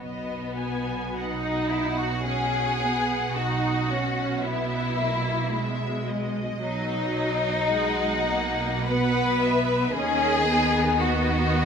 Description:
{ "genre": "classical, slow romantic movement for string orchestra", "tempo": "54 BPM", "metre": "3/4", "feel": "uneven beats, rubato", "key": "B major", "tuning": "A4 = 439 Hz", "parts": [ { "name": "rich symphonic violin section", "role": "melody", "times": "0.0-11.7 s", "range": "D#5 to G#5", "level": "-32 LUFS", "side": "left 4 dB", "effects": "none" }, { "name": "rich symphonic violin section", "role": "second line", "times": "0.0-11.7 s", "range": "B3 to B4", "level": "-26 LUFS", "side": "left 2 dB", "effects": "none" }, { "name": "clear symphonic double bass section", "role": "bass", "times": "0.0-11.7 s", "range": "B1 to D#2", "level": "-32 LUFS", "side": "right 3 dB", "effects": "none" }, { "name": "rich symphonic cello section", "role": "bass", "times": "0.0-11.7 s", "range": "B2 to D#3", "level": "-32 LUFS", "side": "right 3 dB", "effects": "none" }, { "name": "clear symphonic viola section", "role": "accompaniment", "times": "1.2-11.7 s", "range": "F#3 to D#4", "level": "-29 LUFS", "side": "right 1 dB", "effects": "none" } ], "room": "moderate recital hall reverb, RT60 1.6 s", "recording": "minimal, uncompressed stereo recording", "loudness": "-22 LUFS", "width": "side -6 dB against mid", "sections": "0.0-11.7 A section", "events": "none", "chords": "0.0 B; 3.4 Badd11; 9.9 B/D#" }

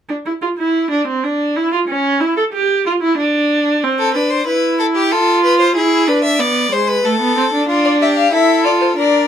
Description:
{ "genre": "classical, baroque-style fugue for string quartet", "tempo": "93 BPM", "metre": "3/4", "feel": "straight", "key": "D minor", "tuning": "A4 = 439 Hz", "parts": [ { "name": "rich viola", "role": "accompaniment", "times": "0.1-9.3 s", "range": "G#3 to A4", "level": "-14 LUFS", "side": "right 2 dB", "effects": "none" }, { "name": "rich violin", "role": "second line", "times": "4.0-9.3 s", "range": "F4 to E5", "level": "-16 LUFS", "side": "left 3 dB", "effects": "none" }, { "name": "warm violin", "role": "melody", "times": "7.9-9.3 s", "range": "C5 to F5", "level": "-15 LUFS", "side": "left 6 dB", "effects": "none" } ], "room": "light reverb", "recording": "close, detailed microphones", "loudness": "-13 LUFS", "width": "side -9 dB against mid", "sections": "0.0-9.3 A section", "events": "none", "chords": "0.0 N.C.; 3.8 Am/C (rootless); 5.1 F; 5.8 E7; 7.1 Am; 7.7 Dm" }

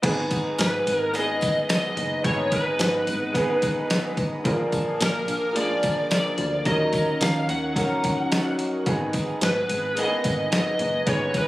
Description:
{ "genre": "indie pop, bedroom pop", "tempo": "109 BPM", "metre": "4/4", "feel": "swing 55% on 16ths", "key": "G# dorian", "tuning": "A4 = 440 Hz", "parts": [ { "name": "electric guitar through a small old amp", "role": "accompaniment", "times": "0.0-11.5 s", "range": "G#2 to A#4", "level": "-30 LUFS", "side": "left 2 dB", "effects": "analog chorus, warbly pitch drift" }, { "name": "warm upright piano", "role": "accompaniment", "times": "0.0-11.5 s", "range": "F#3 to A#4", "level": "-29 LUFS", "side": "right 2 dB", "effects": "cassette tape" }, { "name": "phased analog pad", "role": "sustained chords", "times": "0.5-11.5 s", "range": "A#4 to E#6", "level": "-35 LUFS", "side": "right 1 dB", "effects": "phaser, chorus" }, { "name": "picked electric bass", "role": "bass", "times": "0.0-11.5 s", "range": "F#1 to D#3", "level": "-31 LUFS", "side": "equal", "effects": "none" }, { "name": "dusty soul sampler-style drum kit", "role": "drums", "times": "0.0-11.5 s", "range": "crash cymbal, hi-hat, kick drum, snare drum", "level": "-27 LUFS", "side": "equal", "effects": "none" }, { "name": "tambourine", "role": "percussion", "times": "0.0-11.5 s", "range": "none", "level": "-39 LUFS", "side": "right 2 dB", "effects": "none" }, { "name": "overdriven slide guitar", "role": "melody", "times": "0.6-11.5 s", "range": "A#4 to F#5", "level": "-25 LUFS", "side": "equal", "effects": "ensemble chorus, ping-pong delay" } ], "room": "moderate spring reverb, RT60 1.4 s", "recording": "recorded on a phone in the room, studio reverb", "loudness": "-21 LUFS", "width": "side -17 dB against mid", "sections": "0.0-11.5 A section", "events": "none", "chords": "0.0 G#m; 4.5 A#7; 6.7 D#m7; 8.9 G#m" }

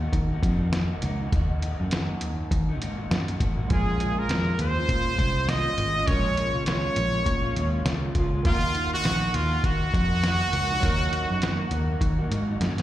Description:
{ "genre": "indie pop, bedroom pop", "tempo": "101 BPM", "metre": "4/4", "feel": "swing 60% on 16ths", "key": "Eb minor", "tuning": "A4 = 440 Hz", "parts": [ { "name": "electric guitar through a small old amp", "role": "accompaniment", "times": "0.0-12.8 s", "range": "Bb2 to Gb4", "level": "-34 LUFS", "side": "left 2 dB", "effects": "lush chorus, vibrato effect, slapback echo" }, { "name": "vintage muted picked electric bass", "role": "bass", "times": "0.0-12.8 s", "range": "Ab1 to Eb3", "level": "-26 LUFS", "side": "equal", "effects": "none" }, { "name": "lo-fi sampler-style drum kit", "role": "drums", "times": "0.1-12.8 s", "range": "hi-hat, kick drum, snare drum", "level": "-27 LUFS", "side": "equal", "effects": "none" }, { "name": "brilliant trumpet", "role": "melody", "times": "3.7-12.6 s", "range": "F4 to Eb5", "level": "-27 LUFS", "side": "right 1 dB", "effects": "analog chorus, slapback echo, digital delay" }, { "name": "warm analog keys", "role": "accompaniment", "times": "3.7-12.8 s", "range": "Eb3 to Bb4", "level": "-35 LUFS", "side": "right 4 dB", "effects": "chorus, cassette tape" } ], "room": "light reverb", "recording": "live gig heard through the venue's PA, recital hall reverb", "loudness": "-22 LUFS", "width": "side -13 dB against mid", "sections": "0.0-12.8 A section", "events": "drum fill 12.6", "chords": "0.0 Ebm; 3.7 Bbm7; 8.5 Ebm" }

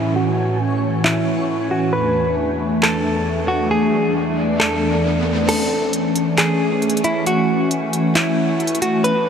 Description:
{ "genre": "hip hop, atmospheric cloud-rap", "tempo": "135 BPM", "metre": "4/4", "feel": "half-time", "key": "A major", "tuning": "A4 = 441 Hz", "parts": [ { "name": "direct-recorded clean electric guitar", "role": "melody", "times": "0.0-9.3 s", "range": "E4 to B4", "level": "-21 LUFS", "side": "equal", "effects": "low-pass filter, tape echo" }, { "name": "hollow soft pad", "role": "sustained chords", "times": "0.0-9.3 s", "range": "E2 to G#5", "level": "-19 LUFS", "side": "equal", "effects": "ensemble chorus, low-pass filter" }, { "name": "downlifter and riser", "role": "sound effects", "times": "0.0-5.5 s", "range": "none", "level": "-31 LUFS", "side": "right 3 dB", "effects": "none" }, { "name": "backwards swelling texture", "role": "texture", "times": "0.0-9.3 s", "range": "A3 to G#5", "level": "-28 LUFS", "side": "left 2 dB", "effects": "built-in reverb, ensemble chorus" }, { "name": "trap drum kit", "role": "drums", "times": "1.0-9.1 s", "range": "crash cymbal, handclaps, hi-hat", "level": "-24 LUFS", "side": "equal", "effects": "none" } ], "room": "wet huge ambient reverb, RT60 7.0 s", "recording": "dreamy mix soaked in reverb", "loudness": "-16 LUFS", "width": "side -7 dB against mid", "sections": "0.0-5.5 A section; 5.5-9.3 B section", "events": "filter sweep 0.0-5.5; riser 3.3-5.5; kick muted 3.7-5.5, 5.5-9.3", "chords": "0.0 Amaj7; 1.9 E7sus4; 5.5 Amaj7" }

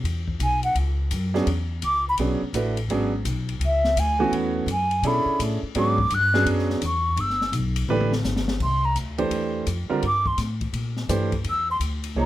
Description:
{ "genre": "modal jazz", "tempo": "168 BPM", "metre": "4/4", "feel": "swing 64% on 8ths", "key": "E mixolydian, C mixolydian from 8.6 s", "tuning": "A4 = 442 Hz", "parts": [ { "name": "upright bass", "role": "bass", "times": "0.0-12.3 s", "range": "G1 to B2", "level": "-26 LUFS", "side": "left 1 dB", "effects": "none" }, { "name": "open jazz drum kit", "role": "drums", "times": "0.1-12.1 s", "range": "crash cymbal, hi-hat, kick drum, ride cymbal, snare drum, toms", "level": "-32 LUFS", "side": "left 3 dB", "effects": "none" }, { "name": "mellow hollow silver concert flute", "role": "melody", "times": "0.4-12.3 s", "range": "E5 to F#6", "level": "-22 LUFS", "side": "equal", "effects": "none" }, { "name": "clear baby grand piano", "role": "accompaniment", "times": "1.3-12.3 s", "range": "D3 to Db5", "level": "-24 LUFS", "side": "right 3 dB", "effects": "none" } ], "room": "light reverb", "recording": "none", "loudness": "-21 LUFS", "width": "side -14 dB against mid", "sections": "0.0-8.6 A section; 8.6-12.3 A section", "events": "flute solo 0.0-12.3; drum fill 7.9-8.6", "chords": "0.0 E13; 7.2 G69; 8.6 C9" }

